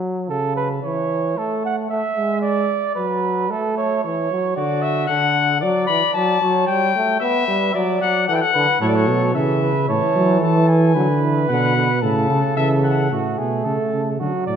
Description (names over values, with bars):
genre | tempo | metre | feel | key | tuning
classical, imitative canzona for brass ensemble | 112 BPM | 4/4 | straight | unclear | A4 = 437 Hz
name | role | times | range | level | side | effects
warm trombone | accompaniment | 0.0-14.6 s | C#3 to B3 | -22 LUFS | equal | none
warm flugelhorn | second line | 0.3-14.6 s | F#4 to F#5 | -23 LUFS | right 5 dB | none
mellow trumpet | melody | 4.6-13.1 s | C#5 to B5 | -20 LUFS | left 8 dB | none
dark bass trombone | bass | 8.8-14.6 s | A2 to F#3 | -19 LUFS | right 1 dB | none
room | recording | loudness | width
wet scoring stage reverb, RT60 1.9 s | none | -16 LUFS | side -8 dB against mid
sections
0.0-13.1 A section; 13.1-14.6 B section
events
none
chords
0.3 A/C#; 1.4 A5; 2.4 D; 3.5 A; 4.6 D; 6.7 G; 7.7 D/F#; 8.8 A; 11.0 D; 12.0 A